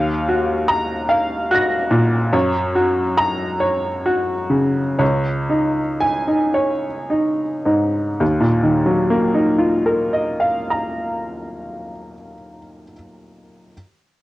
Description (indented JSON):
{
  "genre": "neoclassical minimalist piano",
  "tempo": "35-49 BPM (dotted quarters)",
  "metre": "6/8",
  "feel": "rubato",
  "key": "Eb minor",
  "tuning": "A4 = 437 Hz",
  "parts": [
    { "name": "bright upright piano", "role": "solo", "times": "0.0-13.7 s", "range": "Db2 to Bb6", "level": "-17 LUFS", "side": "equal", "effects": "none" }
  ],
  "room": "light reverb",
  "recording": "home recording on cassette",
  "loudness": "-16 LUFS",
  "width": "side -17 dB against mid",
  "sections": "0.0-8.2 A section; 8.2-11.5 B section",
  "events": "slowing down 1.1-8.2",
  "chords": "0.0 Ebmadd9; 2.3 Gb; 5.0 Dbsus2; 8.2 Ebmadd9"
}